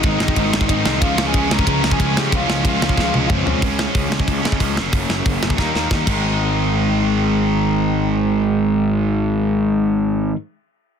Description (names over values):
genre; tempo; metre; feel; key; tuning
punk rock; 184 BPM; 4/4; straight; Ab major; A4 = 440 Hz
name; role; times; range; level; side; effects
bluesy overdriven lead guitar; melody; 0.0-3.6 s; C4 to Bb5; -23 LUFS; left 1 dB; distortion, ping-pong delay
distorted electric guitar; riff; 0.0-10.4 s; Gb2 to Eb4; -22 LUFS; right 14 dB; overdrive
overdriven electric guitar; riff; 0.0-10.4 s; Gb2 to Eb4; -22 LUFS; left 17 dB; none
fuzz picked electric bass; bass; 0.0-10.3 s; Gb1 to Db3; -21 LUFS; equal; overdrive
tight metal drum kit; drums; 0.0-6.1 s; crash cymbal, hi-hat, kick drum, ride cymbal, snare drum, toms; -20 LUFS; equal; soft clipping on kick
thick fuzz guitar; riff; 1.0-3.5 s; Db3 to Db4; -25 LUFS; equal; distortion
room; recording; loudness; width
little or no reverb; dense, heavily limited modern master; -16 LUFS; side -7 dB against mid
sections
0.0-3.6 A section; 3.6-6.2 B section; 6.2-8.8 C section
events
drum fill 3.0-3.6, 5.6-6.2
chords
0.0 Ab; 1.0 Db; 4.8 Gb; 5.6 Eb; 6.1 Ab